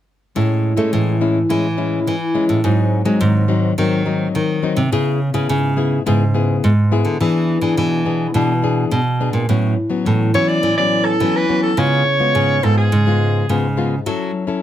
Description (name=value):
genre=samba and choro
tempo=105 BPM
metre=4/4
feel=straight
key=A major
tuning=A4 = 442 Hz
part: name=nylon-string guitar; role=accompaniment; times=0.4-14.6 s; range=G#2 to A4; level=-20 LUFS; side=left 6 dB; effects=none
part: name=nylon-string guitar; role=bass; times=0.4-14.3 s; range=G#2 to A3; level=-17 LUFS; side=right 2 dB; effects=none
part: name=warm soprano saxophone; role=melody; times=10.3-13.6 s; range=G#4 to D5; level=-18 LUFS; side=right 1 dB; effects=none
room=little or no reverb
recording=close, detailed microphones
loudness=-14 LUFS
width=side -11 dB against mid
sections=0.4-9.5 A section; 9.5-14.6 B section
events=none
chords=0.4 Amaj7; 2.6 G#7; 4.9 C#m7; 7.2 E7; 9.5 A69; 11.8 C#7; 14.1 F#m7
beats=| 0.36 0.93 1.50 2.07 | 2.64 3.21 3.78 4.35 | 4.92 5.50 6.07 6.64 | 7.21 7.78 8.35 8.92 | 9.49 10.06 10.63 11.21 | 11.78 12.35 12.92 13.49 | 14.06